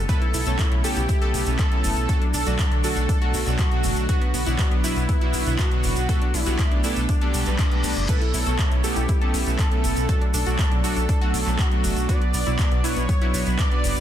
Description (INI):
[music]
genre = progressive house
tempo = 120 BPM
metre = 4/4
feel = straight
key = B minor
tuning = A4 = 440 Hz
[part]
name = wide unison lead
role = melody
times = 0.0-14.0 s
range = D4 to D5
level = -29 LUFS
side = equal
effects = lush chorus, sidechain pumping, dub echo
[part]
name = lush unison pad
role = sustained chords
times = 0.0-14.0 s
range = C#3 to D4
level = -35 LUFS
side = equal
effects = none
[part]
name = round analog bass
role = bass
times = 0.0-14.0 s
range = F#1 to B1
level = -25 LUFS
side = equal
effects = sidechain pumping
[part]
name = analog pluck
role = arpeggios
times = 0.1-14.0 s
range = B3 to B4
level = -33 LUFS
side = left 1 dB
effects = chorus, sidechain pumping, dub echo
[part]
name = soft supersaw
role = stabs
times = 0.1-14.0 s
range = B2 to D5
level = -28 LUFS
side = right 2 dB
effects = sidechain pumping, dub echo
[part]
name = deep house drum kit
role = drums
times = 0.1-14.0 s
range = crash cymbal, handclaps, hi-hat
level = -32 LUFS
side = left 1 dB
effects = overdrive, studio reverb
[part]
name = electronic kick drum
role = drums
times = 0.1-13.7 s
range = none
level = -22 LUFS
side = equal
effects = overdrive, studio reverb
[part]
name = egg shaker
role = percussion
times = 0.1-14.0 s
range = none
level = -35 LUFS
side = right 3 dB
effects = none
[part]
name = reverse cymbal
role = sound effects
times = 7.4-8.1 s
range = none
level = -35 LUFS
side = left 3 dB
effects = none
[sound]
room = little or no reverb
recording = dense, heavily limited modern master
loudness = -19 LUFS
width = side -11 dB against mid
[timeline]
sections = 0.0-14.0 A section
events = reverse cymbal 7.4-8.1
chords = 0.1 Aadd9/B; 2.1 D/B; 4.1 Bm; 6.1 Gadd9/B; 8.1 Aadd9/B; 10.1 D/B; 12.1 Bm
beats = | 0.09 0.59 1.09 1.59 | 2.09 2.59 3.09 3.59 | 4.09 4.59 5.09 5.59 | 6.09 6.59 7.09 7.59 | 8.09 8.59 9.09 9.59 | 10.09 10.59 11.09 11.59 | 12.09 12.59 13.09 13.59